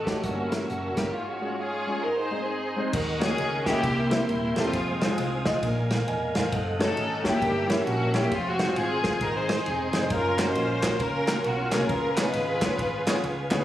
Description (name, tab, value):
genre	uptempo gospel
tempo	134 BPM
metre	4/4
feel	swing 63% on 8ths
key	Db major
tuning	A4 = 443 Hz
part	muted studio string section	melody	0.0-13.5 s	Ab3 to C5	-28 LUFS	equal	tape echo
part	tonewheel organ	sustained chords	0.0-13.6 s	Ab4 to Eb6	-33 LUFS	right 2 dB	chorus vibrato, stopped rotary speaker
part	hollow-body short-scale fingered electric bass	bass	0.0-13.6 s	Eb1 to Eb2	-32 LUFS	equal	none
part	warm grand piano	accompaniment	0.1-13.6 s	G2 to Ab5	-30 LUFS	left 1 dB	none
part	natural country drum kit	drums	0.1-13.6 s	crash cymbal, hi-hat, kick drum, ride cymbal, snare drum	-30 LUFS	equal	none
part	group handclap	percussion	10.4-13.6 s	none	-34 LUFS	right 2 dB	none
room	light reverb, studio reverb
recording	recorded on a phone in the room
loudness	-24 LUFS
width	side -13 dB against mid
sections	0.0-2.9 A section; 2.9-13.6 B section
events	none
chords	0.2 Gdim7; 1.1 Db/Ab; 2.0 Ab; 2.9 Ebm7; 3.8 C7; 4.7 Fm7; 5.6 Bb5; 6.5 Gbm6; 7.4 Gdim7; 8.3 Fm; 9.2 Ab; 10.1 Gbmaj7; 11.9 Db7